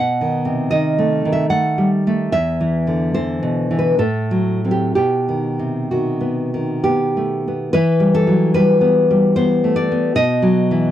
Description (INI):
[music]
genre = romantic piece for solo classical guitar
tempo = 61-80 BPM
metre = 3/4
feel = rubato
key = E minor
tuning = A4 = 441 Hz
[part]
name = nylon-string guitar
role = solo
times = 0.0-10.9 s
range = E2 to F#5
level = -15 LUFS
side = equal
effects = none
[sound]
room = little or no reverb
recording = dry, close 1970s-style studio recording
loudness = -15 LUFS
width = side -11 dB against mid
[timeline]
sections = 0.0-7.7 A section; 7.7-10.9 B section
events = none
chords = 0.0 B7; 2.3 E5; 4.0 F#dim/A; 4.9 B; 7.7 Em; 10.1 B